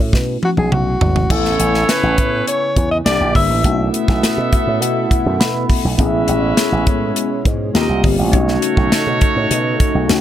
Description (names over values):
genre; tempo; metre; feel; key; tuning
polished 1980s jazz-funk pop; 102 BPM; 4/4; straight; unclear; A4 = 442 Hz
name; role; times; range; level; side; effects
mellow tine electric piano; accompaniment; 0.0-10.2 s; A3 to B5; -21 LUFS; left 2 dB; medium stereo tremolo, wide subtle chorus
slap bass with an envelope filter; bass; 0.0-10.2 s; G1 to B2; -19 LUFS; equal; none
tight funk drum kit; drums; 0.1-10.2 s; crash cymbal, hi-hat, kick drum, snare drum, toms; -17 LUFS; equal; none
warm alto saxophone; melody; 0.4-3.9 s; F#4 to E5; -19 LUFS; left 2 dB; none
clear horn section; second line; 1.3-10.2 s; A3 to E5; -22 LUFS; right 2 dB; none
lush unison pad; sustained chords; 1.3-10.2 s; B2 to G#5; -24 LUFS; right 1 dB; chorus
room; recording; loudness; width
little or no reverb; none; -13 LUFS; side -11 dB against mid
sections
0.0-1.3 A section; 1.3-10.2 B section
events
drum fill 0.1-1.3; tine electric piano fill 4.2-6.0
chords
0.0 B7sus4; 1.3 Amaj9; 3.1 C9; 3.6 B7sus4; 6.0 Amaj9; 7.8 D#69; 8.3 B9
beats
0.13 0.72 | 1.30 1.89 2.47 3.06 | 3.65 4.23 4.82 5.40 | 5.99 6.58 7.16 7.75 | 8.34 8.92 9.51 10.10